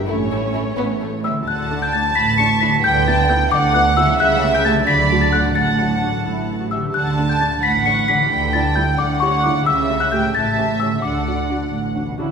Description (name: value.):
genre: cinematic, playful, whimsical film cue.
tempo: 88 BPM (dotted quarters).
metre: 6/8.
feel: straight.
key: D major.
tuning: A4 = 439 Hz.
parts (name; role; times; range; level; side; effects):
dark studio violin section; melody; 0.0-11.7 s; C#5 to C#6; -28 LUFS; left 1 dB; none.
small celesta; melody; 0.0-11.7 s; E4 to C#7; -19 LUFS; left 2 dB; none.
concert harp; arpeggios; 0.0-12.3 s; A2 to E5; -25 LUFS; left 4 dB; none.
warm studio violin section; second line; 0.1-12.0 s; G3 to A5; -22 LUFS; right 1 dB; none.
dark studio viola section; accompaniment; 0.1-12.3 s; G3 to G4; -27 LUFS; right 3 dB; none.
warm studio cello section; bass; 0.1-12.3 s; A2 to D3; -24 LUFS; right 5 dB; none.
warm studio double bass section; bass; 0.1-12.3 s; A1 to D2; -25 LUFS; right 2 dB; none.
room: wet scoring stage reverb, RT60 1.7 s.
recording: recorded in a church or concert hall.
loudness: -15 LUFS.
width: side -6 dB against mid.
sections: 0.0-1.5 A section; 1.5-12.3 B section.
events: none.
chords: 0.1 A; 1.5 D; 2.8 Em7/D; 4.2 A7/C#; 4.9 D; 5.6 D/A; 6.2 A; 6.9 D; 8.3 Em7/D; 9.7 A7/C#; 10.3 A7; 11.0 D.